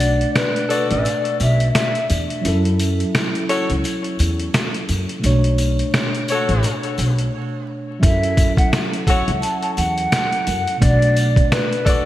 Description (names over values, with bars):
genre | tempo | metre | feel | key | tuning
hip hop, boom-bap hip-hop | 86 BPM | 4/4 | swing 57% on 16ths | B minor | A4 = 440 Hz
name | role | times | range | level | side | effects
breathy mellow concert flute | melody | 0.0-2.1, 8.0-12.0 s | B4 to A5 | -22 LUFS | equal | high-pass filter, low-pass filter, ping-pong delay
mellow tine electric piano | accompaniment | 0.0-12.1 s | B2 to D5 | -24 LUFS | right 1 dB | medium stereo tremolo, cassette tape, high-pass filter, low-pass filter
upright bass | bass | 0.0-11.4 s | A1 to F#2 | -19 LUFS | equal | none
trip hop sampler-style drum kit | drums | 0.0-12.1 s | hi-hat, kick drum, snare drum | -20 LUFS | equal | gated reverb
sleigh bells | percussion | 0.0-12.1 s | none | -34 LUFS | left 3 dB | none
warm saxophone section | stabs | 0.7-12.1 s | F#4 to D5 | -25 LUFS | left 3 dB | high-pass filter, low-pass filter, ping-pong delay
room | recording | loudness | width
moderate lush hall reverb, RT60 3.0 s | bright 1980s-style digital production, vinyl crackle | -16 LUFS | side -14 dB against mid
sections
0.0-12.1 A section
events
break 0.0-8.0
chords
0.0 Bm7; 2.4 F#m7; 5.2 Bm9; 8.0 F#m7; 10.8 Bm7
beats
0.35 1.05 1.75 | 2.44 3.14 3.84 4.54 | 5.24 5.93 6.63 7.33 | 8.03 8.72 9.42 10.12 | 10.82 11.52